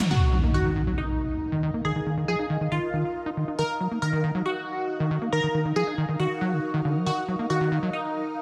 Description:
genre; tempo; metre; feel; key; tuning
trance; 138 BPM; 4/4; straight; Eb minor; A4 = 441 Hz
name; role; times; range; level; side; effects
supersaw stab; melody; 0.0-8.4 s; Eb4 to Bb4; -31 LUFS; equal; phaser, dub echo
overtone-sweeping drone; sustained chords; 0.0-8.4 s; Eb4; -39 LUFS; equal; chorus, built-in reverb, phaser
overdriven acid bass; riff; 0.0-7.9 s; D3 to Eb4; -30 LUFS; equal; distortion, dub echo
impact; sound effects; 0.1-1.8 s; none; -30 LUFS; equal; none
ethereal airy pad; texture; 1.0-8.4 s; Eb4 to Eb6; -38 LUFS; equal; ensemble chorus, built-in reverb
room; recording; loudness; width
moderate lush hall reverb, RT60 2.3 s; none; -26 LUFS; mono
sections
0.1-8.4 A section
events
impact 0.1-1.8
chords
0.1 Eb5

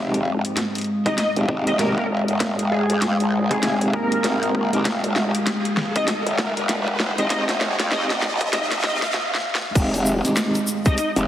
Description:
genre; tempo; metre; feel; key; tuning
glitch hop; 98 BPM; 4/4; swing 61% on 16ths; F minor; A4 = 440 Hz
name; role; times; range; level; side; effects
dark analog pad; sustained chords; 0.2-11.3 s; Ab3 to Eb6; -27 LUFS; left 1 dB; chorus, sidechain pumping
electric guitar at the edge of break-up; stabs; 0.0-11.3 s; Ab3 to G4; -26 LUFS; equal; tremolo, sidechain pumping, dub echo
growl bass; bass; 0.0-11.3 s; F1 to F2; -24 LUFS; equal; chorus, high-pass filter
riser; sound effects; 0.0-9.1 s; none; -31 LUFS; right 1 dB; none
drum and bass drum kit; drums; 0.1-11.3 s; crash cymbal, hi-hat, snare drum; -25 LUFS; equal; overdrive, studio ambience
sync lead; melody; 1.1-11.1 s; Ab4 to Eb5; -26 LUFS; equal; ensemble chorus, cassette tape, dub echo
electronic kick drum; drums; 1.1-11.0 s; none; -22 LUFS; equal; overdrive, high-pass filter on kick, studio ambience
egg shaker; percussion; 9.8-11.3 s; none; -31 LUFS; left 1 dB; none
room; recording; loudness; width
wet lush hall reverb, RT60 1.7 s; heavily compressed radio sound, multiband compression, high-pass filter; -19 LUFS; side -11 dB against mid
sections
0.0-9.8 A section; 9.8-11.3 B section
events
build-up 0.0-9.8; drum fill 0.0-9.1, 9.1-9.8; riser 0.0-9.1; filter sweep 0.0-9.8; stop 9.1-9.8; drop 9.8-11.3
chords
0.0 Fm7

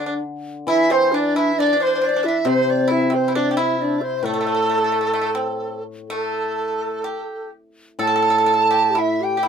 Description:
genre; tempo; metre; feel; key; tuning
chinese traditional, Chinese chamber ensemble; 62-68 BPM; 4/4; rubato; A yu mode; A4 = 440 Hz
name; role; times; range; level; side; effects
large dizi; melody; 0.0-9.5 s; A4 to A5; -20 LUFS; right 4 dB; none
breathy hollow low xiao; second line; 0.0-9.5 s; D4 to C5; -23 LUFS; left 2 dB; none
pipa; second line; 0.0-9.5 s; A3 to A4; -26 LUFS; right 1 dB; none
hammered dulcimer; accompaniment; 0.0-9.5 s; A2 to E3; -25 LUFS; left 4 dB; none
room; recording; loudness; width
light reverb; close, detailed microphones; -17 LUFS; side -7 dB against mid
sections
0.0-9.5 A section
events
none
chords
none

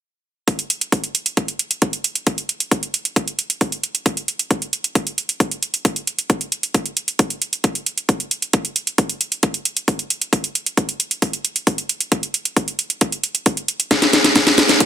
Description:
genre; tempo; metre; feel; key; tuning
uplifting trance; 134 BPM; 4/4; straight; none; none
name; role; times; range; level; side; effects
electronic kick drum; drums; 0.5-14.9 s; none; -18 LUFS; left 1 dB; high-pass filter on kick, high-pass filter on room
house drum kit; drums; 0.5-14.9 s; hi-hat, snare drum; -17 LUFS; right 1 dB; none
room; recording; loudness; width
moderate recital hall reverb, RT60 1.6 s; dense, heavily limited modern master; -18 LUFS; side -10 dB against mid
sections
0.5-14.9 A section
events
drum fill 13.9-14.8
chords
none

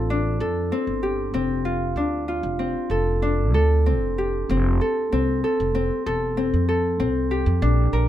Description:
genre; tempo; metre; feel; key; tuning
contemporary instrumental, chamber music in an uneven meter; 96 BPM; 5/4; straight; F major; A4 = 440 Hz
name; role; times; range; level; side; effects
Celtic harp; arpeggios; 0.0-8.1 s; C4 to Bb4; -23 LUFS; left 1 dB; none
upright bass; bass; 0.0-8.1 s; E1 to F2; -23 LUFS; right 1 dB; none
room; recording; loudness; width
light reverb; minimal, uncompressed stereo recording; -20 LUFS; side -12 dB against mid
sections
0.0-4.5 A section; 4.5-8.1 B section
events
none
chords
0.0 Bbmaj9 (rootless); 1.3 F69; 4.5 Fmaj7

